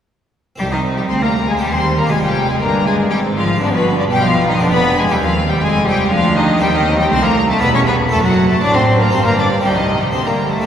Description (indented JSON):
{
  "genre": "classical, baroque-style concerto movement with solo episodes",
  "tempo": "120 BPM",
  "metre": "3/4",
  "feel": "straight",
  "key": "C minor, G minor from 6.6 s",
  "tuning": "A4 = 439 Hz",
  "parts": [
    { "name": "rich cello", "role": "melody", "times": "0.6-10.7 s", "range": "B2 to D4", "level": "-17 LUFS", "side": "equal", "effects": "none" },
    { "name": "rich chamber violin section", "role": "melody", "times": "0.6-10.7 s", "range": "B4 to D6", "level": "-21 LUFS", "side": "left 3 dB", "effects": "none" },
    { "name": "warm chamber violin section", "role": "second line", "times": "0.6-10.7 s", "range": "B3 to D5", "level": "-21 LUFS", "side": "left 1 dB", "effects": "none" },
    { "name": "harpsichord", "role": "accompaniment", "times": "0.6-10.7 s", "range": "C2 to A4", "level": "-26 LUFS", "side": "equal", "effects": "none" },
    { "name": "warm chamber viola section", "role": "accompaniment", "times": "0.6-10.6 s", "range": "F#3 to D4", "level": "-24 LUFS", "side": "right 1 dB", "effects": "none" },
    { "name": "rich chamber double bass section", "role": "bass", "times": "0.6-10.7 s", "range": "E1 to Eb2", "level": "-21 LUFS", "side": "right 2 dB", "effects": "none" },
    { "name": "warm studio cello section", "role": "bass", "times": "0.6-10.7 s", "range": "C2 to D3", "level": "-22 LUFS", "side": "right 2 dB", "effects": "none" }
  ],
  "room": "wet church reverb, RT60 3.7 s",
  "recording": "recorded in a church or concert hall",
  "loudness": "-12 LUFS",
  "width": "side -9 dB against mid",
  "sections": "0.6-10.7 A section",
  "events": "none",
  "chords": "0.6 C5; 1.6 Cm/Eb; 2.1 Ddim/F; 3.6 G; 4.6 G7/F; 5.1 Cm; 6.6 Cm/Eb; 7.6 A5/E; 8.1 D/F#; 9.1 Gm; 9.6 Cm; 10.1 Gm/D",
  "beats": "| 0.59 1.09 1.60 | 2.10 2.60 3.10 | 3.60 4.11 4.60 | 5.10 5.60 6.10 | 6.61 7.11 7.61 | 8.11 8.62 9.12 | 9.62 10.13 10.64"
}